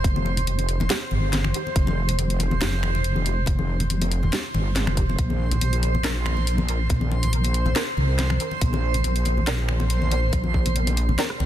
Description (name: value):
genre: deep dubstep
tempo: 140 BPM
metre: 4/4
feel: swing 54% on 16ths, half-time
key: unclear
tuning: A4 = 440 Hz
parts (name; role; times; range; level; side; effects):
- wobble bass; bass; 0.0-11.5 s; F1 to C2; -22 LUFS; equal; chorus
- electronic kick drum; drums; 0.0-10.6 s; none; -23 LUFS; equal; none
- garage drum kit; drums; 0.0-11.4 s; finger snaps, handclaps, hi-hat, rim click, snare drum; -29 LUFS; left 1 dB; none
- congas; percussion; 0.0-11.5 s; none; -30 LUFS; left 3 dB; dub echo
- backwards swelling texture; texture; 0.0-11.5 s; C5; -30 LUFS; right 2 dB; built-in reverb
- filtered dub chord stab; stabs; 0.9-11.2 s; Ab3 to Bb4; -35 LUFS; right 2 dB; analog chorus, dub echo
room: little or no reverb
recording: dense, heavily limited modern master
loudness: -20 LUFS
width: side -12 dB against mid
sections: 0.0-11.5 A section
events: filter sweep on synth stab 0.0-11.5; drum fill 11.2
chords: 0.0 F5; 5.2 Bbsus2